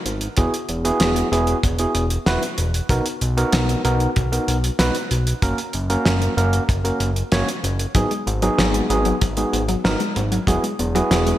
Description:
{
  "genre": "synthwave",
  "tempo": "95 BPM",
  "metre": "4/4",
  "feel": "straight",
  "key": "unclear",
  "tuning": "A4 = 440 Hz",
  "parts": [
    { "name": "fat analog bass", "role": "bass", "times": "0.1-11.3 s", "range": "E1 to B1", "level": "-22 LUFS", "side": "equal", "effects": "none" },
    { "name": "cloth-damped thuddy drum kit", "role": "drums", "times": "0.1-11.4 s", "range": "hi-hat, snare drum", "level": "-24 LUFS", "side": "equal", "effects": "gated reverb" },
    { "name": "overdriven tine electric piano", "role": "stabs", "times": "0.4-11.4 s", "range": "A#3 to C#5", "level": "-22 LUFS", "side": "right 1 dB", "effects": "digital delay" },
    { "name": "kick drum", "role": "drums", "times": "0.4-10.6 s", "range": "none", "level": "-20 LUFS", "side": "equal", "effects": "none" },
    { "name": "wide unison pluck", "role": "arpeggios", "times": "8.0-11.4 s", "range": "F#3 to B3", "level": "-25 LUFS", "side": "left 2 dB", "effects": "digital delay" }
  ],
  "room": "moderate lush hall reverb, RT60 1.7 s, small room ambience",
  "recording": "bright 1980s-style digital production",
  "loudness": "-18 LUFS",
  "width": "side -13 dB against mid",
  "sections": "0.0-11.4 A section",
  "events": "none",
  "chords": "0.4 Eadd9; 2.9 Bmaj7; 5.4 F#; 8.0 G#m7; 10.5 Eadd9",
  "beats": "| 0.37 1.00 1.64 2.27 | 2.90 3.53 4.16 4.79 | 5.43 6.06 6.69 7.32 | 7.95 8.58 9.21 9.85 | 10.48 11.11"
}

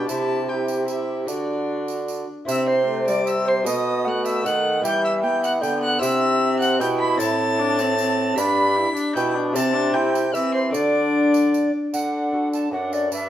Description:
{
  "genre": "classical, renaissance-style consort dance",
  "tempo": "152 BPM",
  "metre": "3/4",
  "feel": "straight",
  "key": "D mixolydian",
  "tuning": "A4 = 440 Hz",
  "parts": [
    { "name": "rich violin", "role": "melody", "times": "0.0-13.3 s", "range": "A4 to B6", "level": "-28 LUFS", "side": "left 3 dB", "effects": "none" },
    { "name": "mellow tenor recorder", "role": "second line", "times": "0.0-13.3 s", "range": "F#4 to B5", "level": "-25 LUFS", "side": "right 3 dB", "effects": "none" },
    { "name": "lute", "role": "accompaniment", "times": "0.0-13.3 s", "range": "F#2 to D5", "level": "-27 LUFS", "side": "left 3 dB", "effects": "none" },
    { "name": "rich viola", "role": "accompaniment", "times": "0.0-13.3 s", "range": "G3 to E4", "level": "-27 LUFS", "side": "equal", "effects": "none" },
    { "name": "clear bassoon", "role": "bass", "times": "0.0-13.3 s", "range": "F#2 to E3", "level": "-24 LUFS", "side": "equal", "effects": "none" },
    { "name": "tambourine", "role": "percussion", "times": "0.1-13.3 s", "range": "none", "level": "-38 LUFS", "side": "right 6 dB", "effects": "none" }
  ],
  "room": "moderate stone room reverb, RT60 1.0 s",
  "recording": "heard from further back in the room",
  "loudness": "-19 LUFS",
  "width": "side -11 dB against mid",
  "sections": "0.0-2.5 A section; 2.5-11.9 A section; 11.9-13.3 B section",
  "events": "none",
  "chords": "0.1 C; 1.3 D; 2.5 C; 3.7 B7; 4.8 Em; 6.0 C; 7.2 Am; 8.4 G; 9.6 C; 10.7 D",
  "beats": "| 0.09 0.48 0.88 | 1.28 1.68 2.08 | 2.47 2.87 3.27 | 3.66 4.05 4.45 | 4.84 5.23 5.63 | 6.02 6.41 6.80 | 7.20 7.59 7.98 | 8.37 8.76 9.16 | 9.55 9.95 10.34 | 10.74 11.14 11.54 | 11.93 12.33 12.72 | 13.12"
}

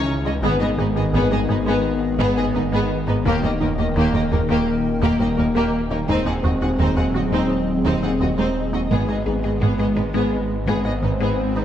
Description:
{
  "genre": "cinematic, hybrid orchestral and electronic film score",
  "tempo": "85 BPM",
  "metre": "4/4",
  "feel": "straight",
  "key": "G# harmonic minor",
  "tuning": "A4 = 440 Hz",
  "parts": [
    { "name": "warm symphonic violin section", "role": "melody", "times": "0.0-11.6 s", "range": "G4 to F#5", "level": "-31 LUFS", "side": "left 3 dB", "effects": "none" },
    { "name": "warm symphonic violin section", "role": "second line", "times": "0.0-11.6 s", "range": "A#3 to G#4", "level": "-28 LUFS", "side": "left 2 dB", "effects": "none" },
    { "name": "warm symphonic viola section", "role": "accompaniment", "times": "0.0-11.6 s", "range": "A#3 to C#4", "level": "-28 LUFS", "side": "right 2 dB", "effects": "none" },
    { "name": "dark French horn section", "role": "sustained chords", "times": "0.0-11.4 s", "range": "D#3 to B#3", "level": "-25 LUFS", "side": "left 2 dB", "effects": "none" },
    { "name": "hollow soft pad", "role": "sustained chords", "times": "0.0-11.6 s", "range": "C#3 to G5", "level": "-28 LUFS", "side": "equal", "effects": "ensemble chorus" },
    { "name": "snarling distorted saw bass", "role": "bass", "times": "0.0-11.6 s", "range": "D#1 to C#2", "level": "-27 LUFS", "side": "equal", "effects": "distortion" },
    { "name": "felt-muted upright piano", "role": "texture", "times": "0.0-11.6 s", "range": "G#4 to C#5", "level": "-41 LUFS", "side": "left 1 dB", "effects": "none" },
    { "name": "resonant blip pluck", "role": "arpeggios", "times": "0.3-11.6 s", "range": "D#3 to G#4", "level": "-30 LUFS", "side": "equal", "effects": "chorus, phaser, digital delay" },
    { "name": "rich symphonic cello section", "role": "bass", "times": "0.3-11.6 s", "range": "C#2 to G#2", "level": "-25 LUFS", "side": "right 1 dB", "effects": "none" },
    { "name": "rich symphonic double bass section", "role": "bass", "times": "0.4-11.1 s", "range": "G#1 to D#2", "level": "-26 LUFS", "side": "right 2 dB", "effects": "none" },
    { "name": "swell", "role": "sound effects", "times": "10.9-11.6 s", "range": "none", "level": "-29 LUFS", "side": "left 2 dB", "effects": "none" }
  ],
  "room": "wet scoring stage reverb, RT60 1.6 s",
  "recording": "dark, warm production",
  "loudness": "-18 LUFS",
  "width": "side -10 dB against mid",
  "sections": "0.0-11.6 A section",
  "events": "swell 10.9-11.6",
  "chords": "0.4 G#m; 3.3 D#; 6.1 G#7/D#; 8.9 G#m",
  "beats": "| 0.43 1.14 1.85 2.55 | 3.26 3.96 4.67 5.38 | 6.08 6.79 7.49 8.20 | 8.90 9.61 10.32 11.02"
}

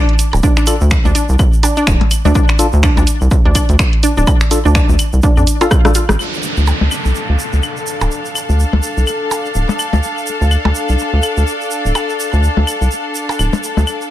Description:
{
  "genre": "minimal techno",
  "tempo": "125 BPM",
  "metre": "4/4",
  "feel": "swing 58% on 16ths",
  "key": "D minor",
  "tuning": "A4 = 440 Hz",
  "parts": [
    { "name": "punchy analog drum machine", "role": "drums", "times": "0.1-6.2 s", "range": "finger snaps, hi-hat, rim click", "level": "-19 LUFS", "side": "right 1 dB", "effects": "low-pass filter on hats, low-pass filter on snare" },
    { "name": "egg shaker", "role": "percussion", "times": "0.2-14.1 s", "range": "none", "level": "-26 LUFS", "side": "right 5 dB", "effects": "none" },
    { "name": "rubbery square bass", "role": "bass", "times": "0.3-13.8 s", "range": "D1 to F2", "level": "-13 LUFS", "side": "equal", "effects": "sidechain pumping" },
    { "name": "percussion blips and claves", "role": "percussion", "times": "0.3-14.0 s", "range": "none", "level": "-20 LUFS", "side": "left 3 dB", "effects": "overdrive, ping-pong delay" },
    { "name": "resonant blip pluck", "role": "riff", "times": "0.4-6.0 s", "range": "D4 to F4", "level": "-19 LUFS", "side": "equal", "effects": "chorus, sidechain pumping, digital delay" },
    { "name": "electronic kick drum", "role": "drums", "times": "0.4-5.8 s", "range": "none", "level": "-13 LUFS", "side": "equal", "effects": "none" },
    { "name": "percussive organ stab", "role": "stabs", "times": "0.7-5.9 s", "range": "D4 to A4", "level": "-20 LUFS", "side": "left 3 dB", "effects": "chorus, ping-pong delay" },
    { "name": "downlifter", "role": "sound effects", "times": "6.2-10.0 s", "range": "none", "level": "-24 LUFS", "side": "right 1 dB", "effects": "none" },
    { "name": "clear symphonic string section", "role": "texture", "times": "6.2-14.1 s", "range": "D4 to F5", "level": "-19 LUFS", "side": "left 2 dB", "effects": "sidechain pumping" }
  ],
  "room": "light reverb, digital ambience",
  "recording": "none",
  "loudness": "-11 LUFS",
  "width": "side -13 dB against mid",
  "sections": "0.0-6.2 A section; 6.2-14.1 B section",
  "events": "drop 0.0-6.2; drum fill 5.7-6.2",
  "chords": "0.0 Dm",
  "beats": "| 0.43 0.91 1.39 1.87 | 2.35 2.83 3.31 3.79 | 4.27 4.75 5.23 5.71 | 6.19 6.67 7.15 7.63 | 8.11 8.59 9.07 9.55 | 10.03 10.51 10.99 11.47 | 11.95 12.43 12.91 13.39 | 13.87"
}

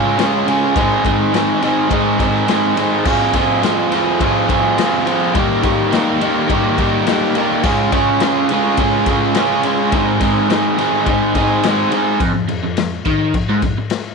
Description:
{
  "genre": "garage rock duo or trio",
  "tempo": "105 BPM",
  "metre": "4/4",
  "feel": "straight",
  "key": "unclear",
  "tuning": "A4 = 439 Hz",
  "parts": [
    { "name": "overdriven electric guitar", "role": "riff", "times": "0.0-13.8 s", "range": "F2 to Ab4", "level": "-14 LUFS", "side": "right 2 dB", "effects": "none" },
    { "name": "raw garage drum kit", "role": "drums", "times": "0.2-14.0 s", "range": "crash cymbal, kick drum, ride cymbal, snare drum", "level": "-20 LUFS", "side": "left 4 dB", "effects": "none" }
  ],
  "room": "light reverb, small room ambience",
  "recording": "1960s-style stereo",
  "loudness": "-13 LUFS",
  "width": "side -4 dB against mid",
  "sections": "0.0-12.2 A section; 12.2-14.1 B section",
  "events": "none",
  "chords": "0.0 Db; 0.8 Ab; 3.1 Fm; 5.3 Eb; 7.6 Db; 9.9 Ab; 12.2 N.C.",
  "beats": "0.18 | 0.76 1.33 1.91 2.48 | 3.05 3.63 4.20 4.78 | 5.35 5.92 6.50 7.07 | 7.64 8.21 8.78 9.35 | 9.92 10.49 11.06 11.63 | 12.20 12.77 13.34 13.91"
}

